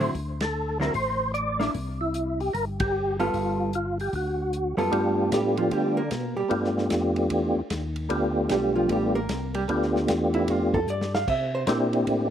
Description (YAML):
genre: soul jazz organ trio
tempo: 151 BPM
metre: 4/4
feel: swing 65% on 8ths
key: G mixolydian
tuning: A4 = 440 Hz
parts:
  - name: percussive tonewheel organ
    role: melody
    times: 0.0-12.3 s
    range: A3 to D5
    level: -25 LUFS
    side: equal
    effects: chorus vibrato, fast rotary speaker, slapback echo
  - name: vintage hollow-body jazz guitar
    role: accompaniment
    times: 0.0-11.6 s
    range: D3 to F5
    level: -27 LUFS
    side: right 2 dB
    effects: none
  - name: tonewheel organ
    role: bass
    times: 0.0-12.3 s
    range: G1 to D3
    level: -31 LUFS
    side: left 1 dB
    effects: overdrive, chorus vibrato, slow rotary speaker
  - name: warm soul drum kit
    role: drums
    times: 0.0-12.2 s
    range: crash cymbal, hi-hat, kick drum, ride cymbal, snare drum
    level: -34 LUFS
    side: left 1 dB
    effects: none
room: little or no reverb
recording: recorded outdoors, with no room sound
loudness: -23 LUFS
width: side -10 dB against mid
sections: 0.0-4.9 A section; 4.9-12.3 B section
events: band accent 0.3, 2.7; hollow-body jazz guitar solo 4.9-12.3; drum fill 10.9-11.3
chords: 0.0 D9; 1.7 C; 3.3 G9; 4.1 D; 4.9 G9; 11.3 C9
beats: | 0.14 0.54 0.94 1.34 | 1.74 2.14 2.54 2.93 | 3.33 3.73 4.13 4.52 | 4.92 5.32 5.72 6.11 | 6.51 6.91 7.30 7.70 | 8.10 8.50 8.89 9.29 | 9.69 10.08 10.48 10.88 | 11.27 11.67 12.07